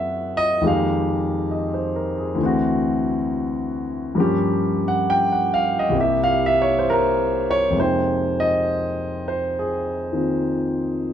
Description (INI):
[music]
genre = jazz ballad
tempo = 68 BPM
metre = 4/4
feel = swing 67% on 8ths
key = F minor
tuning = A4 = 440 Hz
[part]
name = warm concert grand piano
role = solo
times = 0.0-11.1 s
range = C2 to G5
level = -19 LUFS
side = equal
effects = none
[sound]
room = moderate studio reverb, RT60 0.9 s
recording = dark, warm production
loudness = -19 LUFS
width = side -9 dB against mid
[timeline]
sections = 0.0-7.8 A section; 7.8-11.1 B section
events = none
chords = 0.0 Gb9; 0.6 Fm11; 2.4 D7; 4.2 Gm7b5; 5.9 C7; 7.8 Fm11